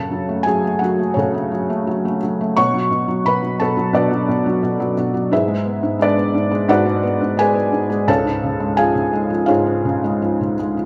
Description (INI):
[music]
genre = classical, lyrical solo piano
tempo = 86 BPM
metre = 4/4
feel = rubato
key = F# minor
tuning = A4 = 440 Hz
[part]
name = felt-muted upright piano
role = solo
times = 0.0-10.9 s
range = C#2 to C#6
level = -18 LUFS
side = equal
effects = none
[sound]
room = moderate recital hall reverb, RT60 1.4 s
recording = recorded in a church or concert hall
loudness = -18 LUFS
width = mono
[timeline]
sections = 0.0-10.9 A section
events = none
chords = 0.0 F#m; 2.6 Bm; 5.3 G#dim; 8.1 C#